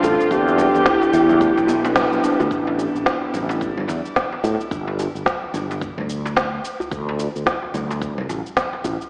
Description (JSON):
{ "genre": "organic downtempo", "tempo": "109 BPM", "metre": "4/4", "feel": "swing 60% on 16ths", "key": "unclear", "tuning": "A4 = 439 Hz", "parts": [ { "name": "mellow duduk", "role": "melody", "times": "0.0-1.9 s", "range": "F4 to G4", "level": "-25 LUFS", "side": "equal", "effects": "digital delay, shimmer reverb" }, { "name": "bowed-like drone", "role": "sustained chords", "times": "0.0-2.5 s", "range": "D3 to G4", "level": "-32 LUFS", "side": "equal", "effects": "built-in reverb, vintage 12-bit sampler grit, sidechain pumping, shimmer reverb" }, { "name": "kalimba", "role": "arpeggios", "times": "0.0-2.4 s", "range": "A3 to B4", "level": "-24 LUFS", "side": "equal", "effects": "digital delay, shimmer reverb" }, { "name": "fretless electric bass", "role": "bass", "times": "0.0-9.0 s", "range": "G1 to A2", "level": "-26 LUFS", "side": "equal", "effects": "sidechain pumping" }, { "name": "electronic cabasa, congas and snare drum", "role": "drums", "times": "0.0-9.1 s", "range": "none", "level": "-26 LUFS", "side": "equal", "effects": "none" }, { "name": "djembe", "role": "percussion", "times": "0.0-9.0 s", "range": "none", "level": "-32 LUFS", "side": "equal", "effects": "none" }, { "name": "electronic kick drum", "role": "drums", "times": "0.3-8.7 s", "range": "none", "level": "-34 LUFS", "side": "equal", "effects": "none" } ], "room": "wet echo chamber reverb, RT60 2.5 s", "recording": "played on a big sound system in a bare room, large studio reverb, AM radio sound", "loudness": "-20 LUFS", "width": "mono", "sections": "0.0-2.5 A section; 2.5-9.1 B section", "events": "band accent 2.0", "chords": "0.3 Em; 2.5 A5; 4.7 G5; 6.9 D5" }